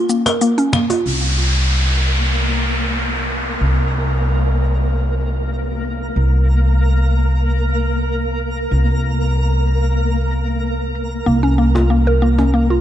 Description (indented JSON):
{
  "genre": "organic downtempo",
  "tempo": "94 BPM",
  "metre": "4/4",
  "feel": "straight",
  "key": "unclear",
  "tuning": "A4 = 440 Hz",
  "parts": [
    { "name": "mallet-like synth pluck", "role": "arpeggios", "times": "0.0-1.0, 11.3-12.8 s", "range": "Bb3 to Bb4", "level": "-16 LUFS", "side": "equal", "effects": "chorus, tape echo" },
    { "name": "deep house drum kit", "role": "drums", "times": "0.1-12.8 s", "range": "claves, finger snaps, hi-hat, shaker", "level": "-23 LUFS", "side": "left 2 dB", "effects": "low-pass filter on perc, low-pass filter on hats, low-pass filter on snare" },
    { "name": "cajon", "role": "percussion", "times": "0.3-1.0, 11.8-12.5 s", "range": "none", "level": "-23 LUFS", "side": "left 2 dB", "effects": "none" },
    { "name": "upright bass", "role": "bass", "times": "1.1-12.8 s", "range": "C2", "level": "-16 LUFS", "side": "equal", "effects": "none" },
    { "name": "downlifter", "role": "sound effects", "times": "1.1-6.2 s", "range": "none", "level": "-22 LUFS", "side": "equal", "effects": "none" },
    { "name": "twinkling granular texture", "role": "texture", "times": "2.0-12.8 s", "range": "Bb3 to Bb4", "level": "-24 LUFS", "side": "equal", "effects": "built-in reverb" }
  ],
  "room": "light reverb",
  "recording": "nothing above 10.7 kHz",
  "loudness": "-15 LUFS",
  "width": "side -11 dB against mid",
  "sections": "0.0-1.1 A section; 1.1-12.8 B section",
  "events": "break 0.0-1.1",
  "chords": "0.0 Bbm; 1.1 Bbsus2/C; 11.3 Bbmadd9/C"
}